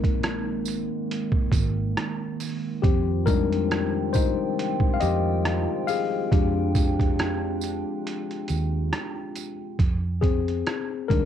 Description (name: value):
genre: lo-fi hip hop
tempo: 69 BPM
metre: 4/4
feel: swing 56% on 16ths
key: F dorian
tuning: A4 = 440 Hz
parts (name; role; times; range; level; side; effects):
- mellow tine electric piano; accompaniment; 0.0-11.3 s; G3 to F5; -27 LUFS; left 10 dB; medium stereo tremolo, cassette tape
- dark analog pad; sustained chords; 0.0-9.8 s; Eb3 to G5; -32 LUFS; right 11 dB; lush chorus, cassette tape
- vintage muted fingered electric bass; bass; 0.0-11.3 s; Ab1 to F2; -27 LUFS; right 2 dB; none
- trip hop sampler-style drum kit; drums; 0.0-11.3 s; hi-hat, kick drum, rim click; -25 LUFS; right 2 dB; cassette tape
- tambourine; percussion; 0.7-9.6 s; none; -39 LUFS; right 16 dB; none
room: light reverb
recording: home recording on cassette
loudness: -22 LUFS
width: side -10 dB against mid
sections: 0.0-9.8 A section; 9.8-11.3 B section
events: tine electric piano solo 0.0-9.8, 9.8-11.3; break 8.1-9.8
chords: 0.0 Bb9sus4; 2.8 Fm9; 6.3 Fm69; 9.8 Fm7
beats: 0.23 1.10 1.97 | 2.83 3.70 4.57 5.44 | 6.31 7.18 8.05 8.92 | 9.79 10.66